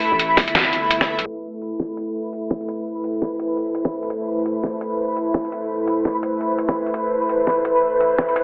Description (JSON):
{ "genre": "half-time drum and bass", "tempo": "169 BPM", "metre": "4/4", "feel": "swing 58% on 16ths, half-time", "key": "A minor", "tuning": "A4 = 440 Hz", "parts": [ { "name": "bowed-like drone", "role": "sustained chords", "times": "0.0-8.4 s", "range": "A3 to E5", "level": "-21 LUFS", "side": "equal", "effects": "built-in reverb, phaser, sidechain pumping" }, { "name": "long sustained 808-style bass", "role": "bass", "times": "0.0-1.3 s", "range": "E1 to D2", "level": "-33 LUFS", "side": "equal", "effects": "none" }, { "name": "pulsing gated texture", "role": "texture", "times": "0.0-8.4 s", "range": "B5", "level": "-25 LUFS", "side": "equal", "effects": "chorus, built-in reverb" }, { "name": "boom bap sampler-style drum kit", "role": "drums", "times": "0.2-8.4 s", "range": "hi-hat, snare drum", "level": "-22 LUFS", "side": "equal", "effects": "low-pass filter on hats, small room ambience, low-pass filter on snare" }, { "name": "electronic kick drum", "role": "drums", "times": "0.4-0.5 s", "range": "none", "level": "-20 LUFS", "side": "equal", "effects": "overdrive, small room ambience" } ], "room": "wet lush hall reverb, RT60 2.0 s", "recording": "heavily compressed radio sound, low-pass filter, telephone sound", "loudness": "-19 LUFS", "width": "side -30 dB against mid", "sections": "0.0-1.3 A section; 1.3-8.4 B section", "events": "drop 0.0-1.3", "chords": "0.0 Asus2; 1.3 Amadd9" }